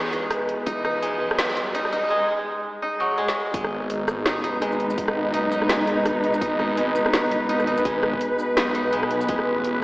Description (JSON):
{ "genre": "half-time drum and bass", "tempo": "167 BPM", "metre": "4/4", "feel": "swing 57% on 16ths, half-time", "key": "G# minor", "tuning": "A4 = 438 Hz", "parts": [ { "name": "dark studio cello section", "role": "sustained chords", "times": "0.0-9.8 s", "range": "B2 to B4", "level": "-24 LUFS", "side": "equal", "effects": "vintage 12-bit sampler grit, sidechain pumping" }, { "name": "koto", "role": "arpeggios", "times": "0.0-9.8 s", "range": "F#3 to D#4", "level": "-26 LUFS", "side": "equal", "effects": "diffuse ambient delay" }, { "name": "riser and swell", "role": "sound effects", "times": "0.3-3.5 s", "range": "none", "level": "-34 LUFS", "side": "equal", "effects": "none" }, { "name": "drum and bass drum kit", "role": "drums", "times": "0.1-9.7 s", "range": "hi-hat, rim click, shaker, snare drum, toms", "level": "-26 LUFS", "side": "equal", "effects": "overdrive, high-pass filter on hats, studio reverb, high-pass filter on snare, high-pass filter on toms, high-pass filter on perc" }, { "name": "electronic kick drum", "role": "drums", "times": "0.7, 3.5-9.4 s", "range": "none", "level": "-30 LUFS", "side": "equal", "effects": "studio reverb" }, { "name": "phased detuned saw bass", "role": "bass", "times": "3.5-9.8 s", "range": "F#1 to B1", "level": "-30 LUFS", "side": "equal", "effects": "phaser" } ], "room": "wet lush hall reverb, RT60 1.8 s, digital ambience", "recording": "dreamy mix soaked in reverb, high-pass filter, AM radio sound", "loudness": "-21 LUFS", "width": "side -21 dB against mid", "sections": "0.0-3.5 A section; 3.5-9.8 B section", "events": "build-up 0.0-3.5; riser 0.3-2.1; swell 2.8-3.5; drum fill 3.2-3.5; drop 3.5-9.8", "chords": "0.0 Emaj9/B; 3.5 G#m; 9.3 Asus2", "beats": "0.31 | 0.67 1.02 1.38 1.74 | 2.10 2.46 2.82 3.18 | 3.54 3.90 4.26 4.62 | 4.98 5.34 5.70 6.05 | 6.41 6.77 7.13 7.49 | 7.85 8.21 8.57 8.93 | 9.29 9.65" }